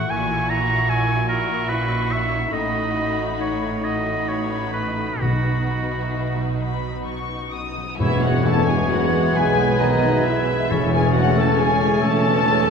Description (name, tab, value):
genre	classical, slow romantic movement for symphony orchestra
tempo	42-51 BPM (dotted quarters)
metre	6/8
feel	rubato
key	E major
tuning	A4 = 441 Hz
part	muted studio violin section	melody	0.0-12.7 s	D#5 to D#6	-27 LUFS	left 4 dB	none
part	clear oboe	second line	0.0-12.7 s	F#4 to A#5	-26 LUFS	right 1 dB	none
part	muted studio violin section	second line	0.0-12.7 s	D#4 to A4	-31 LUFS	left 3 dB	none
part	muted symphonic viola section	accompaniment	0.0-12.7 s	C#3 to E4	-29 LUFS	right 1 dB	none
part	concert harp	arpeggios	0.0-12.7 s	A2 to C#6	-28 LUFS	left 7 dB	none
part	muted studio cello section	bass	0.0-12.7 s	E2 to B2	-28 LUFS	right 3 dB	none
part	muted studio double bass section	bass	0.0-12.7 s	E1 to B1	-27 LUFS	right 4 dB	none
part	cymbal swell and tam-tam	percussion	5.2-11.6 s	none	-34 LUFS	left 2 dB	none
part	timpani	percussion	5.2-12.0 s	E2 to B2	-28 LUFS	equal	none
part	mellow clarinet	second line	8.0-12.7 s	D#4 to A4	-28 LUFS	left 1 dB	none
part	silver concert flute	second line	8.0-12.7 s	G#6 to A6	-30 LUFS	left 4 dB	none
part	mellow bassoon	accompaniment	8.0-12.7 s	B3 to C#4	-28 LUFS	right 4 dB	none
part	clear trombone section	sustained chords	8.0-12.7 s	B2 to A3	-29 LUFS	right 4 dB	none
part	dark French horn section	sustained chords	8.0-12.7 s	D#3 to A3	-27 LUFS	left 2 dB	none
part	warm tuba	bass	8.0-12.7 s	E1 to B1	-27 LUFS	right 4 dB	none
room	wet concert hall reverb, RT60 2.3 s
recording	minimal, uncompressed stereo recording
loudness	-18 LUFS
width	side -6 dB against mid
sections	0.0-8.0 A section; 8.0-12.7 B section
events	band accent 8.0-8.9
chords	0.1 F#7/A#; 2.5 B7/A; 5.2 B; 8.0 E; 10.7 A/E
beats	| 0.11 1.29 | 2.52 3.84 | 5.21 6.59 | 8.00 9.36 | 10.71 12.04